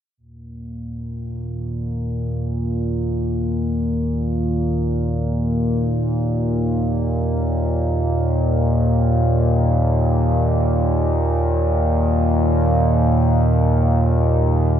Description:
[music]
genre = ambient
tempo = free time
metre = none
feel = none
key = unclear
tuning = A4 = 440 Hz
[part]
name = analog drone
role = solo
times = 0.5-14.8 s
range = Eb2 to Bb2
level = -17 LUFS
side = equal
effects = chorus, ping-pong delay
[sound]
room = wet cathedral reverb, RT60 7.1 s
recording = dark, warm production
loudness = -17 LUFS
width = side -9 dB against mid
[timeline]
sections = 0.2-14.8 A section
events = none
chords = 0.2 Eb5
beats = free time

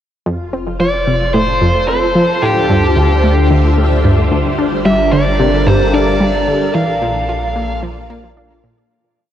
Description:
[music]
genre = ambient, sequencer-driven space music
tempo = 111 BPM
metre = 4/4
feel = straight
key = F major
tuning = A4 = 436 Hz
[part]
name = phased string machine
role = sustained chords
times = 0.3-8.9 s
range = Bb2 to F5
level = -17 LUFS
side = equal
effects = ensemble chorus, phaser
[part]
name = analog pluck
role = riff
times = 0.3-8.8 s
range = D2 to F4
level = -16 LUFS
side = equal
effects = chorus, tape echo
[part]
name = round analog bass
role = bass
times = 0.3-8.9 s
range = F1 to D2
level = -18 LUFS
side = equal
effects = none
[part]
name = high-gain lead guitar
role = melody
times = 0.8-7.8 s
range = G4 to F5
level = -17 LUFS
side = equal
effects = distortion, tape echo
[sound]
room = wet huge ambient reverb, RT60 8.9 s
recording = worn, warbling old tape, cassette tape, warbly pitch drift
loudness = -11 LUFS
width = side -10 dB against mid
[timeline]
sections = 0.3-8.9 A section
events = fade-out 6.0-8.9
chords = 0.3 F; 2.4 Dm7; 4.6 Gm7; 6.7 Bb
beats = | 0.26 0.80 1.34 1.88 | 2.42 2.96 3.50 4.04 | 4.58 5.13 5.67 6.21 | 6.75 7.29 7.83 8.37

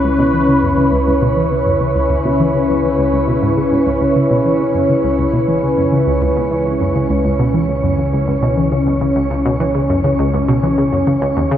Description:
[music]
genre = ambient, sequencer-driven space music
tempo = 102 BPM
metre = 4/4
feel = straight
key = C# minor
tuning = A4 = 440 Hz
[part]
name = sweeping resonant pad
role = sustained chords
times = 0.0-11.6 s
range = C#3 to B4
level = -15 LUFS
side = left 1 dB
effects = lush chorus, shimmer reverb
[part]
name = analog pluck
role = riff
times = 0.0-11.6 s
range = C#2 to E3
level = -18 LUFS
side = equal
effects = chorus, tape echo
[part]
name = analog drone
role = bass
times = 0.0-11.6 s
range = C#2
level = -24 LUFS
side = equal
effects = chorus
[part]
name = wind-like tuned noise texture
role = texture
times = 0.0-11.6 s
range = C#5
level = -24 LUFS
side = right 4 dB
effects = built-in reverb, shimmer reverb
[sound]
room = wet plate reverb, RT60 2.6 s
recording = dreamy mix soaked in reverb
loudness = -13 LUFS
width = side -10 dB against mid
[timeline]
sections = 0.0-11.6 A section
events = filter sweep on synth arpeggio sound 0.0-11.6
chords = 0.0 C#m7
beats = 0.19 0.78 1.37 | 1.96 2.54 3.13 3.72 | 4.31 4.90 5.49 6.07 | 6.66 7.25 7.84 8.43 | 9.02 9.60 10.19 10.78 | 11.37

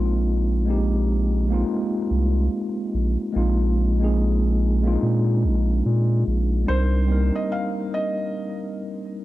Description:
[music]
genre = lo-fi hip hop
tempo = 72 BPM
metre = 4/4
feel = swing 61% on 16ths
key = unclear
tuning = A4 = 440 Hz
[part]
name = mellow tine electric piano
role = accompaniment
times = 0.0-9.2 s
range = G3 to Bb4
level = -24 LUFS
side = equal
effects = medium stereo tremolo, cassette tape
[part]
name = saturated sub bass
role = bass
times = 0.0-7.3 s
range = Bb1 to Bb2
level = -20 LUFS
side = equal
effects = none
[part]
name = felt-muted upright piano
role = melody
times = 6.7-8.6 s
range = C5 to F5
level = -29 LUFS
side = equal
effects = none
[sound]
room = light reverb, studio reverb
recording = dark, warm production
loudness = -20 LUFS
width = side -16 dB against mid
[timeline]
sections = 0.0-6.7 A section; 6.7-9.2 B section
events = none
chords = 0.0 Bb9sus4; 6.7 Cm9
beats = | 0.01 0.84 1.68 2.51 | 3.34 4.18 5.01 5.84 | 6.68 7.51 8.34 9.18

